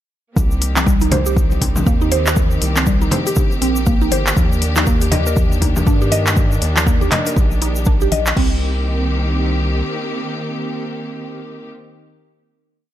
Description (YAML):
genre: afro house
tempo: 120 BPM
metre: 4/4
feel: swing 59% on 16ths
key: C minor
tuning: A4 = 440 Hz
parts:
  - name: warm studio string section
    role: sustained chords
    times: 0.4-11.7 s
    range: Eb3 to G4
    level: -24 LUFS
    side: equal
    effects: sidechain pumping
  - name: round analog bass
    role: bass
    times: 0.4-9.8 s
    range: G1 to G2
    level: -20 LUFS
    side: equal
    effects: sidechain pumping
  - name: electronic kick drum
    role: drums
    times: 0.4-8.5 s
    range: none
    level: -16 LUFS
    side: equal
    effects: none
  - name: congas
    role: percussion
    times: 0.4-8.2 s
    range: none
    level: -24 LUFS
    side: left 2 dB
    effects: none
  - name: egg shaker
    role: percussion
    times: 0.4-8.3 s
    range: none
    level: -29 LUFS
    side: left 2 dB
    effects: none
  - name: afro-pop drum kit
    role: drums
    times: 0.6-8.5 s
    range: crash cymbal, handclaps, hi-hat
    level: -20 LUFS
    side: equal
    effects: none
  - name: mallet-like synth pluck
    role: arpeggios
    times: 0.8-8.6 s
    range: G3 to Eb5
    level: -22 LUFS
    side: right 1 dB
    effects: chorus, phaser, sidechain pumping, ping-pong delay
room: little or no reverb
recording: none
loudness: -14 LUFS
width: side -12 dB against mid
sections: 0.4-8.4 drop; 8.4-12.4 final chord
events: drop 0.4-8.4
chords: 0.4 Cm7; 4.4 Ebmaj7; 8.4 Cm7